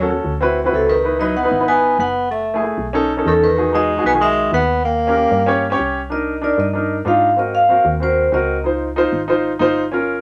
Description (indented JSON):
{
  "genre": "jazz",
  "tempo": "189 BPM",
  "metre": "4/4",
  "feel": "straight",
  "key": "C minor from 6.1 s",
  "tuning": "A4 = 440 Hz",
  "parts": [
    { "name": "vibraphone with medium hard mallets", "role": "melody", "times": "0.0-8.6 s", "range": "A4 to G#5", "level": "-20 LUFS", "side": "equal", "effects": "none" },
    { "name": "warm tenor saxophone", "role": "second line", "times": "0.0-5.8 s", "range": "C3 to B3", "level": "-21 LUFS", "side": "equal", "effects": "none" },
    { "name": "warm baby grand piano", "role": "accompaniment", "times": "0.0-10.2 s", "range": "D#3 to C#5", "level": "-21 LUFS", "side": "equal", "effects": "none" },
    { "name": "woody FM bass", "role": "bass", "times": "0.0-10.2 s", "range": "F#1 to Ab2", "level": "-28 LUFS", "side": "equal", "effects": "none" }
  ],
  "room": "moderate studio reverb, RT60 0.6 s",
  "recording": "none",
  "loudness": "-17 LUFS",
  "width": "mono",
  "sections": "0.0-6.1 A section; 6.1-10.2 B section",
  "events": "vibraphone solo 6.1-10.2",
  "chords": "0.4 D13; 1.0 C#m9; 2.3 F#m7; 2.9 B7; 3.6 Emaj7; 4.8 D#7; 6.1 Cm9; 7.4 Ab7; 8.6 Dbmaj9"
}